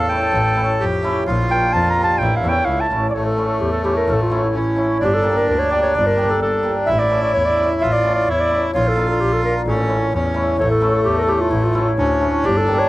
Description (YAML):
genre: klezmer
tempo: 129 BPM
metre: 2/4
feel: straight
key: A phrygian dominant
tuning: A4 = 442 Hz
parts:
  - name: mellow clarinet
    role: melody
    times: 0.0-12.9 s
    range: D4 to Bb5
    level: -19 LUFS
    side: equal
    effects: cassette tape, plate reverb
  - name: accordion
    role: second line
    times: 0.0-12.9 s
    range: A3 to A4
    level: -22 LUFS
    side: equal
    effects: cassette tape, plate reverb
  - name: clear double bass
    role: bass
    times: 0.0-12.7 s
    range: G1 to F2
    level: -21 LUFS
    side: equal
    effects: none
  - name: cimbalom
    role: accompaniment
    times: 0.1-12.8 s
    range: A3 to G4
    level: -23 LUFS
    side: left 1 dB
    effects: cassette tape, plate reverb
room: moderate booth ambience, RT60 0.2 s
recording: home recording on cassette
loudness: -15 LUFS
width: side -17 dB against mid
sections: 0.0-3.1 A section; 3.1-10.6 B section; 10.6-12.9 B section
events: clarinet solo 0.0-3.1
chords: 0.0 A; 1.3 Bb; 2.2 A; 5.0 Gm; 6.9 A; 8.7 Bb; 9.7 A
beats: | 0.33 0.80 | 1.27 1.74 | 2.21 2.67 | 3.14 3.61 | 4.08 4.54 | 5.01 5.48 | 5.94 6.41 | 6.87 7.34 | 7.80 8.27 | 8.73 9.20 | 9.66 10.12 | 10.59 11.05 | 11.51 11.98 | 12.44